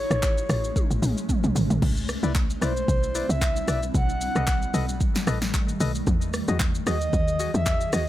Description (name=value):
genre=amapiano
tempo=113 BPM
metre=4/4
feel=swing 55% on 16ths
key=E major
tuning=A4 = 441 Hz
part: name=breathy flute-like synth lead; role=melody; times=0.0-8.1 s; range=C5 to F#5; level=-29 LUFS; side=equal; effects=chorus, digital delay
part: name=granular cloud pad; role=sustained chords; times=0.0-8.1 s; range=D#3 to G#4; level=-32 LUFS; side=equal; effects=built-in reverb
part: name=tight log drum bass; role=bass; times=0.0-8.1 s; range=G#1 to E2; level=-26 LUFS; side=equal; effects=none
part: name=deep house drum kit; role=drums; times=0.1-8.1 s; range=crash cymbal, handclaps, hi-hat, kick drum, rim click, shaker, snare drum, toms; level=-25 LUFS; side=equal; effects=none
part: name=percussive organ stab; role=stabs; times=2.2-8.0 s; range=E4 to D#5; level=-34 LUFS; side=left 7 dB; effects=chorus, digital delay
room=little or no reverb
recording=none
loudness=-22 LUFS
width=side -14 dB against mid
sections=0.0-8.1 A section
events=drum fill 0.8-1.8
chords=0.0 Amaj7; 1.8 Cmaj9; 3.9 B7; 6.1 Emaj9